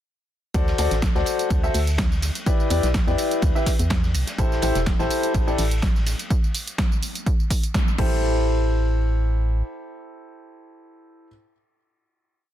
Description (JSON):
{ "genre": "piano house", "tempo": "125 BPM", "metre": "4/4", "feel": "swing 54% on 16ths", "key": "A dorian", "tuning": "A4 = 440 Hz", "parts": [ { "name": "clear grand piano", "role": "riff", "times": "0.5-11.3 s", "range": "E4 to E5", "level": "-25 LUFS", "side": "left 2 dB", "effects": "sidechain pumping, ping-pong delay" }, { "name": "organ-like FM bass", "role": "bass", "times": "0.5-9.6 s", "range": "E1 to E2", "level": "-23 LUFS", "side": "equal", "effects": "sidechain pumping" }, { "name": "electronic kick drum", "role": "drums", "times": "0.5-8.1 s", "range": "none", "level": "-22 LUFS", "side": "equal", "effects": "overdrive" }, { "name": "punchy analog drum machine", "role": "drums", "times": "0.5-8.1 s", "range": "crash cymbal, hi-hat, snare drum, tambourine", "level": "-30 LUFS", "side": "right 1 dB", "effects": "overdrive" }, { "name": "vintage drum kit", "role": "drums", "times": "0.5-6.3 s", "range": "hi-hat, ride cymbal, snare drum", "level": "-37 LUFS", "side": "left 1 dB", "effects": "sidechain pumping on cymbals, high-pass filter on cymbals, sidechain pumping on hats, high-pass filter on hats, high-pass filter on snare, high-pass filter on room" } ], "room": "small room ambience", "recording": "dense, heavily limited modern master", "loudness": "-20 LUFS", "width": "side -12 dB against mid", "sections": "0.5-8.2 drop; 8.2-12.1 final hit", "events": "drop 0.5-8.2; band accent 7.7", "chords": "0.5 D7; 2.5 Em7; 4.4 Am7" }